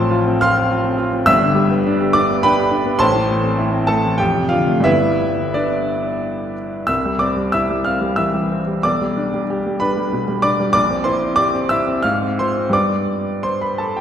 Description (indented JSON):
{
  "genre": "classical, romantic character piece for solo piano",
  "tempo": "85-107 BPM",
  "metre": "3/4",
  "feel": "rubato",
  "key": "C major",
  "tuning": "A4 = 440 Hz",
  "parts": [
    { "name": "clear baby grand piano", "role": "solo", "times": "0.0-14.0 s", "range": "G1 to F6", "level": "-15 LUFS", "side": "equal", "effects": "none" }
  ],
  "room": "wet concert hall reverb, RT60 1.9 s",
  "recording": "heard from further back in the room",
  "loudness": "-15 LUFS",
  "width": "side -9 dB against mid",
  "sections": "0.0-6.9 A section; 6.9-14.0 B section",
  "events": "none",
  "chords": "0.0 F/A; 1.3 G; 3.0 Am; 4.2 Dm7/F; 4.9 G; 6.9 C; 8.8 G/B; 10.7 C7/Bb; 12.0 Fm/Ab; 12.7 G",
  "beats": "0.09 0.70 | 1.28 1.86 2.44 | 3.01 3.59 4.20 | 4.86 5.56 6.23 | 6.88 7.55 8.19 | 8.83 9.49 10.13 | 10.75 11.39 12.05 | 12.73 13.44"
}